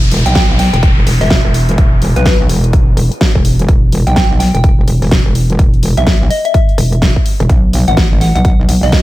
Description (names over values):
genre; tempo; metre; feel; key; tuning
bass house; 126 BPM; 4/4; swing 61% on 16ths; E harmonic minor; A4 = 440 Hz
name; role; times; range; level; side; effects
metallic wobble bass; bass; 0.0-9.0 s; E1 to B1; -12 LUFS; equal; chorus, tube saturation, sidechain pumping
downlifter; sound effects; 0.0-3.7 s; none; -22 LUFS; equal; none
big-room dance drum kit; drums; 0.1-9.0 s; hi-hat, snare drum; -18 LUFS; equal; none
soft synth bell; melody; 0.3-9.0 s; B4 to G5; -19 LUFS; left 1 dB; chorus, phaser, ping-pong delay
electronic kick drum; drums; 0.4-9.0 s; none; -11 LUFS; equal; none
room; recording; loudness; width
digital ambience; none; -9 LUFS; side -16 dB against mid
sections
0.0-9.0 A section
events
none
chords
0.0 E5; 7.5 N.C.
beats
0.35 0.83 1.30 | 1.78 2.26 2.73 3.21 | 3.69 4.16 4.64 5.12 | 5.59 6.07 6.54 7.02 | 7.50 7.97 8.45 8.92